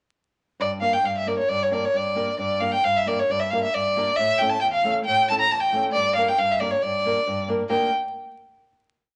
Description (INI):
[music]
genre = balkan folk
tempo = 135 BPM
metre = 2/4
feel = straight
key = G dorian sharp4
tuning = A4 = 440 Hz
[part]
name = rich violin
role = melody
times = 0.6-7.9 s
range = C#5 to Bb5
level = -23 LUFS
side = equal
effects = none
[part]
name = flamenco guitar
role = accompaniment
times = 0.6-7.9 s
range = E2 to Bb4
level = -31 LUFS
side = equal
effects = none
[sound]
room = moderate large studio reverb, RT60 1.1 s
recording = vinyl crackle, nothing above 10.6 kHz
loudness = -23 LUFS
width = mono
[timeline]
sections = 0.6-7.7 A section; 7.7-8.6 final chord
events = none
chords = 0.6 Gm; 4.2 A; 6.0 Gm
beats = | 0.60 1.05 | 1.50 1.95 | 2.40 2.84 | 3.29 3.74 | 4.18 4.63 | 5.07 5.51 | 5.96 6.39 | 6.83 7.26 | 7.70